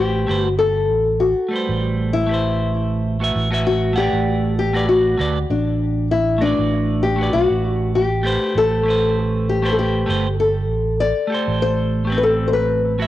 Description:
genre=sunset chillout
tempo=98 BPM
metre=4/4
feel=swing 54% on 16ths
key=A dorian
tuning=A4 = 440 Hz
part: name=nylon-string guitar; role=melody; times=0.0-13.1 s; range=D4 to D5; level=-19 LUFS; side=left 3 dB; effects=cassette tape, plate reverb, analog delay
part: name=clean electric guitar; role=accompaniment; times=0.0-13.1 s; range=G3 to F#5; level=-23 LUFS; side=right 2 dB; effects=auto-pan, cassette tape, plate reverb
part: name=fingered electric bass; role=bass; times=0.0-13.1 s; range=G1 to D2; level=-22 LUFS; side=right 2 dB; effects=tube saturation
room=moderate studio reverb, RT60 0.6 s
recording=home recording on cassette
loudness=-16 LUFS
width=side -14 dB against mid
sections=0.0-13.1 A section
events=none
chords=0.0 Am9; 3.4 Gmaj9/A; 8.6 Am9

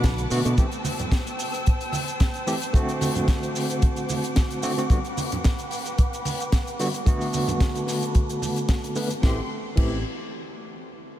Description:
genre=nu-disco, nu disco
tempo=111 BPM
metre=4/4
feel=swing 53% on 16ths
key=A dorian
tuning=A4 = 436 Hz
part: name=overdriven tine electric piano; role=accompaniment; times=0.0-10.0 s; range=D3 to B4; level=-28 LUFS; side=equal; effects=fast tremolo, sidechain pumping, ping-pong delay
part: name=clear studio string section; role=sustained chords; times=0.0-9.5 s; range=A3 to E6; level=-33 LUFS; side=right 1 dB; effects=sidechain pumping, low-pass filter
part: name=electric guitar with an envelope filter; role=riff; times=0.0-0.5 s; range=D4 to B4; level=-42 LUFS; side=equal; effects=none
part: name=modern bright fingered electric bass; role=bass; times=0.0-0.5, 9.2-10.0 s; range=A1 to B2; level=-26 LUFS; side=equal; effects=none
part: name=kick drum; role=drums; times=0.0-9.9 s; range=none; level=-20 LUFS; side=equal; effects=none
part: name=tight funk drum kit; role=drums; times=0.0-9.9 s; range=crash cymbal, hi-hat, shaker, snare drum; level=-32 LUFS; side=left 2 dB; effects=none
part: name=congas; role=percussion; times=0.8-8.5 s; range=none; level=-34 LUFS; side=right 3 dB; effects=none
room=light reverb, small room reverb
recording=none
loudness=-22 LUFS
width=side -12 dB against mid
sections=0.0-9.2 A section; 9.2-11.2 B section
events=filter sweep on string section 0.0-9.2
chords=0.0 Bm7; 0.6 Am7; 2.7 D7; 4.9 Gmaj7; 7.1 Bm7; 9.2 Am7

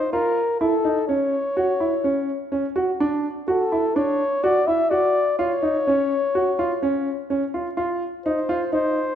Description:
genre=contemporary instrumental, chamber music in an uneven meter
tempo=126 BPM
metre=5/4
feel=straight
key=Db major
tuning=A4 = 440 Hz
part: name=mellow flugelhorn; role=melody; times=0.0-9.2 s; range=A4 to E5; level=-22 LUFS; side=left 3 dB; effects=none
part: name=warm grand piano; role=arpeggios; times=0.1-9.0 s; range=C#4 to Gb4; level=-22 LUFS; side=right 2 dB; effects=none
room=moderate scoring stage reverb, RT60 1.6 s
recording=minimal, uncompressed stereo recording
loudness=-20 LUFS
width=side -9 dB against mid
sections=0.0-7.8 A section; 7.8-9.2 B section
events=none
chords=0.0 Bb5; 0.6 A (rootless); 3.0 Dsus2; 5.4 Db; 7.8 F5

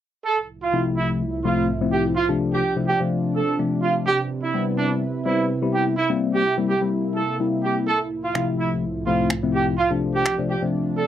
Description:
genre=dance-pop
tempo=126 BPM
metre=4/4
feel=straight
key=unclear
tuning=A4 = 438 Hz
part: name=clear horn section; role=melody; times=0.3-11.1 s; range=D4 to A4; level=-22 LUFS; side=right 4 dB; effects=slapback echo
part: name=lush unison pad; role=sustained chords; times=0.6-11.1 s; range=C2 to B4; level=-27 LUFS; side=right 3 dB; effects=chorus
part: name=tine electric piano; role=accompaniment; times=0.7-11.0 s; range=C3 to F4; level=-23 LUFS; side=left 5 dB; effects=phaser
part: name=electronic finger snaps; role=drums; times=8.4-10.4 s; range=none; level=-25 LUFS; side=right 1 dB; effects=none
room=light reverb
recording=dry, close 1970s-style studio recording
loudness=-20 LUFS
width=side -10 dB against mid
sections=0.3-11.1 A section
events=none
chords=0.3 Fmaj7/C; 2.2 Dm7/C; 4.1 Cmaj7; 6.0 C7; 7.9 Fmaj7/C; 9.8 Dm7/C

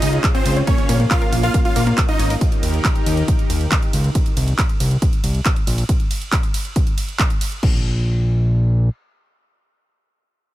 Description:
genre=uplifting trance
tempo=138 BPM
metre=4/4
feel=straight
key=Bb dorian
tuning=A4 = 441 Hz
part: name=supersaw stab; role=melody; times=0.0-2.3 s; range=C4 to F5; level=-24 LUFS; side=equal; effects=sidechain pumping, tape echo
part: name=lush unison pad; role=sustained chords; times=0.0-4.1 s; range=Db3 to Bb4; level=-26 LUFS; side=right 1 dB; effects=chorus, sidechain pumping
part: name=wide unison pluck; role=arpeggios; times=0.0-2.4 s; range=Ab3 to Db5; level=-26 LUFS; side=left 3 dB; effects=sidechain pumping, tape echo
part: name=fat analog bass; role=bass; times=0.0-8.9 s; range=Ab1 to Eb2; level=-18 LUFS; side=equal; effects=tube saturation, sidechain pumping
part: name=techno drum kit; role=drums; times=0.0-7.7 s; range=crash cymbal, handclaps, hi-hat, ride cymbal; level=-25 LUFS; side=right 2 dB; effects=sidechain pumping on hats, sidechain pumping on cymbals
part: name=electronic kick drum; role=drums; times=0.2-7.7 s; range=none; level=-18 LUFS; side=equal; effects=none
room=digital ambience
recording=none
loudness=-16 LUFS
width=side -15 dB against mid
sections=0.0-7.6 A section; 7.6-10.5 B section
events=drop 0.0-7.6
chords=0.0 Db; 0.7 Bbm; 2.4 Eb; 4.2 Bbsus2; 5.9 N.C.

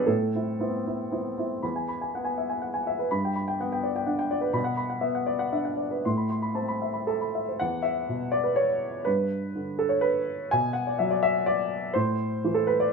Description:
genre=neoclassical minimalist piano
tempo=114-127 BPM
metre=3/4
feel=rubato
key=unclear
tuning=A4 = 440 Hz
part: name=warm upright piano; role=solo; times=0.0-12.9 s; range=E2 to C6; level=-25 LUFS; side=equal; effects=none
room=moderate studio reverb, RT60 0.8 s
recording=band playing live in one room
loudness=-25 LUFS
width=side -4 dB against mid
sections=0.0-1.6 A section; 1.6-7.6 B section; 7.6-12.9 C section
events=none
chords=0.1 Amadd9; 1.6 E; 3.1 G; 4.6 Bm; 6.0 Amadd9; 7.6 E5; 9.1 G; 10.5 Bm; 11.9 Am

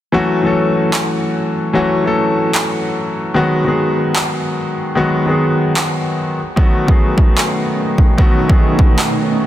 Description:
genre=future bass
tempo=149 BPM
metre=4/4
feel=swing 54% on 16ths, half-time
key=A lydian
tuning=A4 = 440 Hz
part: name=clear concert grand piano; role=accompaniment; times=0.1-9.5 s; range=D#3 to A4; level=-15 LUFS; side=left 1 dB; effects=sidechain pumping, dub echo
part: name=electronic handclaps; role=drums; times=0.9-9.1 s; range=none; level=-20 LUFS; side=equal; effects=none
part: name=shimmering ambient pad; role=sustained chords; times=7.5-9.5 s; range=B2 to D#4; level=-21 LUFS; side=right 3 dB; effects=chorus, built-in reverb, sidechain pumping
part: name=electronic kick drum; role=drums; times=6.6-8.9 s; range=none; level=-11 LUFS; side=equal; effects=none
room=light reverb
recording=dense, heavily limited modern master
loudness=-13 LUFS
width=side -12 dB against mid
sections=0.1-9.5 A section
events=none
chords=0.1 A6; 3.4 G#m7; 6.4 B7

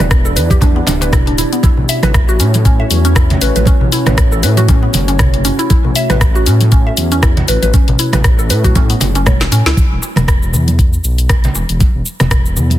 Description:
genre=afro house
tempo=118 BPM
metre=4/4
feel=swing 56% on 16ths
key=E dorian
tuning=A4 = 440 Hz
part: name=dark analog pad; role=sustained chords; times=0.0-9.7 s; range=A3 to D5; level=-22 LUFS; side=equal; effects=chorus, phaser, sidechain pumping
part: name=mallet-like synth pluck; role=arpeggios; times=0.0-9.8 s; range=B3 to E5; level=-19 LUFS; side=equal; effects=lush chorus, sidechain pumping, tape echo
part: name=dark detuned saw bass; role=bass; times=0.0-12.8 s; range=D1 to A2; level=-14 LUFS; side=equal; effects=sidechain pumping
part: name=afro-pop drum kit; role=drums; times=0.0-12.8 s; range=hi-hat, rim click, shaker, snare drum, toms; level=-18 LUFS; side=left 2 dB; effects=soft clipping on snare
part: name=congas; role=percussion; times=0.0-12.8 s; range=none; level=-20 LUFS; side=right 4 dB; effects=none
part: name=darbuka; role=percussion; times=0.0-12.7 s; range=none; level=-21 LUFS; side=left 2 dB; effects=none
part: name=electronic kick drum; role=drums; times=0.1-12.4 s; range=none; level=-11 LUFS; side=equal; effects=none
room=little or no reverb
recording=dense, heavily limited modern master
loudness=-9 LUFS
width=side -13 dB against mid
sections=0.0-9.8 A section; 9.8-12.8 B section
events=drop 0.0-9.8; drum fill 9.3-9.8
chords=0.0 Em7; 1.6 A6; 9.8 E5

